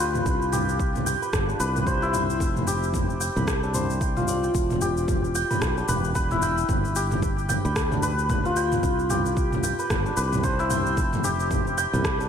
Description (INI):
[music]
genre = organic downtempo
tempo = 112 BPM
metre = 4/4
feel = swing 59% on 16ths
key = unclear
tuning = A4 = 440 Hz
[part]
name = santur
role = arpeggios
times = 0.0-12.3 s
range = D4 to G5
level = -25 LUFS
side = left 1 dB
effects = ping-pong delay
[part]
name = sustaining fretless electric bass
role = bass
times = 0.0-12.3 s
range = E1 to D2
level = -28 LUFS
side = equal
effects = none
[part]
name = organic electronic drum kit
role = drums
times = 0.1-12.3 s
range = rim click, shaker, toms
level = -28 LUFS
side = equal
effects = overdrive
[part]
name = electronic kick drum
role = drums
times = 0.3-12.2 s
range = none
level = -28 LUFS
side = equal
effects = overdrive
[sound]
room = wet plate reverb, RT60 2.0 s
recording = dreamy mix soaked in reverb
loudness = -22 LUFS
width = side -8 dB against mid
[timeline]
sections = 0.0-12.3 A section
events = none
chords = 0.3 Cmaj9; 2.4 Fsus2; 4.5 Em7; 6.7 G7; 8.8 Cmaj9; 11.0 Fsus2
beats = | 0.26 0.80 1.33 1.87 | 2.40 2.94 3.47 4.01 | 4.54 5.08 5.62 6.15 | 6.69 7.22 7.76 8.29 | 8.83 9.37 9.90 10.44 | 10.97 11.51 12.04